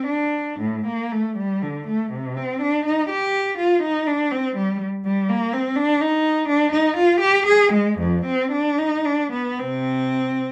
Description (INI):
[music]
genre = classical, baroque-style suite movement for unaccompanied cello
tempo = 72-85 BPM (dotted quarters)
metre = 6/8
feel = rubato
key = G minor, C minor from 5.0 s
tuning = A4 = 440 Hz
[part]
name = warm cello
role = solo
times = 0.0-10.5 s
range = F2 to Ab4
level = -21 LUFS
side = equal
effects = none
[sound]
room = moderate studio reverb, RT60 0.6 s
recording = none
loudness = -21 LUFS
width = mono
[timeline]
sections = 0.0-10.5 A section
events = none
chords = none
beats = | 0.62 1.38 | 2.13 2.87 | 3.59 4.32 | 5.05 5.76 | 6.49 7.21 | 8.00 8.79 | 9.59 10.41